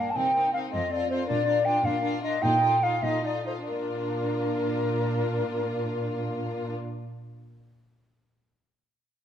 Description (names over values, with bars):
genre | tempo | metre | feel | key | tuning
quick classical-period movement for symphony orchestra | 89-109 BPM (dotted quarters) | 6/8 | rubato | Bb major | A4 = 442 Hz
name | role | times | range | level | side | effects
warm symphonic violin section | melody | 0.0-6.7 s | A4 to Bb4 | -42 LUFS | left 5 dB | none
clear studio violin section | second line | 0.0-6.7 s | D4 to F4 | -36 LUFS | left 4 dB | none
mellow hollow silver concert flute | second line | 0.0-6.8 s | Bb4 to A5 | -26 LUFS | left 1 dB | none
warm chamber viola section | accompaniment | 0.0-6.7 s | Bb3 to Eb4 | -33 LUFS | right 2 dB | none
dark chamber cello section | bass | 0.0-6.7 s | F2 to C3 | -32 LUFS | right 1 dB | none
room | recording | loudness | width
moderate scoring stage reverb, RT60 1.6 s | none | -24 LUFS | side -9 dB against mid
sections
0.0-3.7 A section; 3.7-6.2 B section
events
slowing down 0.7-3.7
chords
0.2 Cm7; 0.7 F; 1.3 Bb; 2.4 F7/Bb; 3.7 Bb